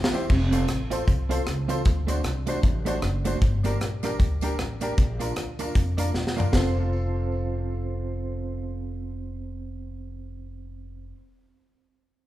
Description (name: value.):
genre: ska.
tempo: 154 BPM.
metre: 4/4.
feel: swing 58% on 8ths.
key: F major.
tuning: A4 = 441 Hz.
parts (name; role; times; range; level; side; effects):
upright bass; bass; 0.0-11.1 s; E1 to F2; -28 LUFS; equal; none.
deep reggae drum kit; drums; 0.0-6.6 s; crash cymbal, hi-hat, kick drum, rim click, snare drum, toms; -25 LUFS; equal; none.
clean electric guitar; accompaniment; 0.1-11.2 s; A3 to C5; -33 LUFS; right 4 dB; tremolo, tape echo.
bright upright piano; stabs; 0.1-11.1 s; C4 to C5; -33 LUFS; left 2 dB; none.
tambourine; percussion; 0.1-6.8 s; none; -47 LUFS; left 5 dB; tape echo.
room: moderate large studio reverb, RT60 1.3 s.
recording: band playing live in one room.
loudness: -23 LUFS.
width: side -14 dB against mid.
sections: 0.3-6.5 A section; 6.5-9.7 B section.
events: drum fill 0.0-0.3, 6.1-6.5.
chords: 0.3 F; 1.9 D7; 3.4 Gm; 5.0 Bb; 6.5 F.